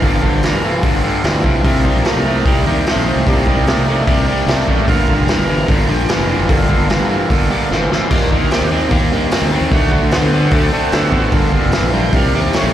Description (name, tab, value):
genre	blues rock power trio and southern rock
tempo	149 BPM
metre	4/4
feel	straight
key	G minor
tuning	A4 = 445 Hz
part	overdriven tonewheel organ	sustained chords	0.0-12.7 s	Eb3 to G5	-21 LUFS	right 2 dB	slow rotary speaker
part	crunchy overdriven guitar	riff	0.0-12.7 s	G2 to C4	-16 LUFS	equal	none
part	fuzz fingered electric bass	bass	0.0-12.7 s	F1 to D3	-18 LUFS	equal	overdrive
part	vintage drum kit	drums	0.0-12.6 s	hi-hat, kick drum, snare drum, splash cymbal	-18 LUFS	equal	none
room	light reverb, small room ambience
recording	live gig heard through the venue's PA, recital hall reverb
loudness	-12 LUFS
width	side -11 dB against mid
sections	0.0-12.7 A section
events	tonewheel organ solo 0.0-12.7; drum fill 7.7-8.1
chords	0.0 Gm9; 1.6 Cm9; 4.9 Gm9; 8.1 Ebmaj7; 9.7 D7; 11.3 Gm9; 12.1 Cm9